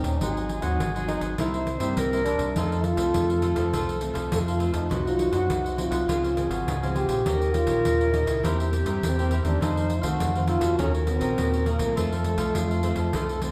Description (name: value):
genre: samba and choro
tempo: 102 BPM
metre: 4/4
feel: straight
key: unclear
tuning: A4 = 436 Hz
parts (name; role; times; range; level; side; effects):
- warm trombone; melody; 0.0-13.5 s; A3 to A4; -30 LUFS; equal; none
- cavaquinho; accompaniment; 0.0-13.5 s; Eb4 to G5; -39 LUFS; equal; none
- nylon-string guitar; accompaniment; 0.0-13.5 s; F2 to G4; -34 LUFS; equal; none
- deep dub fingered electric bass; bass; 0.0-13.5 s; Ab1 to G2; -30 LUFS; equal; none
- pandeiro; percussion; 0.0-13.5 s; none; -35 LUFS; equal; none
- silver concert flute; second line; 0.2-13.5 s; F4 to C5; -33 LUFS; equal; none
room: wet large studio reverb, RT60 1.3 s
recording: heard from further back in the room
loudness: -25 LUFS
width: mono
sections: 0.0-13.5 A section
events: none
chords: 0.2 Ab7; 1.4 C7; 2.6 F; 4.9 Cdim; 6.1 Dbmaj7; 7.3 Eb7; 8.4 C7/E; 9.6 F7; 10.8 Ebm7; 12.0 F